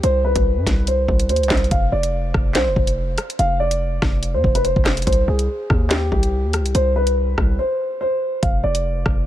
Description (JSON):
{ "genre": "hip hop, drill", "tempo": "143 BPM", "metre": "4/4", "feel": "half-time", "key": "unclear", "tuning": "A4 = 440 Hz", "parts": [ { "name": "dark concert grand piano", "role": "melody", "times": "0.0-9.2 s", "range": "G4 to F5", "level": "-21 LUFS", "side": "equal", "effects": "none" }, { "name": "hard-hitting 808-style bass", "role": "bass", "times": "0.0-9.3 s", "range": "F1 to G2", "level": "-20 LUFS", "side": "equal", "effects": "none" }, { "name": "drill drum kit", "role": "drums", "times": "0.0-9.2 s", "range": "handclaps, hi-hat, kick drum, rim click, snare drum", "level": "-20 LUFS", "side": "equal", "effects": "none" } ], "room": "little or no reverb", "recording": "none", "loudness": "-16 LUFS", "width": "side -12 dB against mid", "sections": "0.0-1.7 A section; 1.7-9.3 B section", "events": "break 7.6-8.4", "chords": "0.0 N.C.; 1.7 F5; 5.1 Cm; 8.4 F5" }